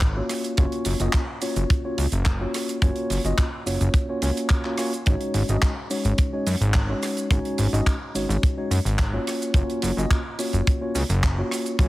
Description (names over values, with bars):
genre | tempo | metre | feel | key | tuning
nu-disco, nu disco | 107 BPM | 4/4 | straight | unclear | A4 = 440 Hz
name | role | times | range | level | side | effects
fat analog bass | bass | 0.0-11.9 s | Gb1 to Gb2 | -23 LUFS | equal | none
kick drum | drums | 0.0-11.9 s | none | -21 LUFS | equal | none
tight funk drum kit | drums | 0.0-11.9 s | cabasa, handclaps, hi-hat, rim click | -30 LUFS | right 1 dB | none
mellow tine electric piano | accompaniment | 0.2-11.9 s | Ab3 to Eb5 | -27 LUFS | equal | lush chorus
room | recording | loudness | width
small room ambience | heavily compressed radio sound, multiband compression | -21 LUFS | side -18 dB against mid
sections
0.0-11.9 A section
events
none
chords
0.3 Gbmaj7; 5.1 Ab7sus4; 9.3 Gbmaj7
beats
0.02 | 0.58 1.14 1.70 2.26 | 2.82 3.38 3.94 4.50 | 5.06 5.62 6.19 6.75 | 7.31 7.87 8.43 8.99 | 9.55 10.11 10.67 11.23 | 11.79